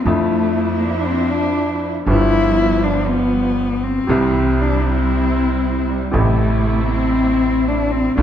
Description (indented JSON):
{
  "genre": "tango",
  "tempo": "119 BPM",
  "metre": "4/4",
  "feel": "rubato",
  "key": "unclear",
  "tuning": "A4 = 439 Hz",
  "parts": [
    { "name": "warm cello", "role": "second line", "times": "0.0-8.2 s", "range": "G3 to E4", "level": "-18 LUFS", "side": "left 3 dB", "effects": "none" },
    { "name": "bright upright piano", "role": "accompaniment", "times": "0.0-8.2 s", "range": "G1 to E4", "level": "-22 LUFS", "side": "equal", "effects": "none" },
    { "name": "warm studio string section", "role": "stabs", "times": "0.1-8.2 s", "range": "F3 to F4", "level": "-24 LUFS", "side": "right 4 dB", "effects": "none" },
    { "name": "upright bass", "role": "bass", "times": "0.1-8.2 s", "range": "G1 to F2", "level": "-21 LUFS", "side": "right 2 dB", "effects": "none" }
  ],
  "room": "wet recital hall reverb, RT60 1.4 s",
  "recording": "recorded in a church or concert hall",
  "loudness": "-15 LUFS",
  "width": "side -9 dB against mid",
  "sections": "0.0-8.2 A section",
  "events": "cello solo 0.0-8.2",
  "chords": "0.1 Dmadd9/F; 2.1 G7; 4.1 C; 6.1 Am",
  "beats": "| 0.06 0.56 1.06 1.57 | 2.07 2.57 3.08 3.58 | 4.09 4.60 5.11 5.62 | 6.14 6.65 7.16 7.67 | 8.17"
}